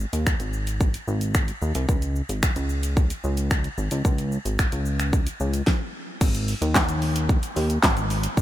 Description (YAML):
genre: dance-pop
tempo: 111 BPM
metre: 4/4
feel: straight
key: unclear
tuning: A4 = 441 Hz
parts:
  - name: chorused synth bass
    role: bass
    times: 0.0-8.4 s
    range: Ab1 to Eb2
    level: -25 LUFS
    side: equal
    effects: sidechain pumping
  - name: pop drum kit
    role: drums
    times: 0.1-8.4 s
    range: crash cymbal, finger snaps, handclaps, hi-hat, kick drum, shaker, snare drum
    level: -23 LUFS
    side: equal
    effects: none
room: little or no reverb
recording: none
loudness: -21 LUFS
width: side -13 dB against mid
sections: 0.0-6.2 A section; 6.2-8.4 B section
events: none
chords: none